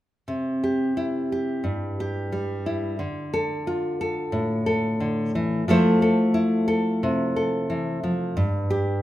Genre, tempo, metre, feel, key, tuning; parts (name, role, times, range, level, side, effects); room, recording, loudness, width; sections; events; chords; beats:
folk; 89 BPM; 4/4; straight; C major; A4 = 445 Hz
nylon-string guitar; accompaniment; 0.3-9.0 s; G2 to C5; -22 LUFS; equal
wet recital hall reverb, RT60 1.6 s; minimal, uncompressed stereo recording; -22 LUFS; side -14 dB against mid
0.3-9.0 A section
0.3 C; 3.0 Dm; 5.7 Fmaj7; 8.4 G5
| 0.28 0.96 1.64 2.32 | 2.99 3.66 4.33 5.00 | 5.67 6.35 7.02 7.69 | 8.37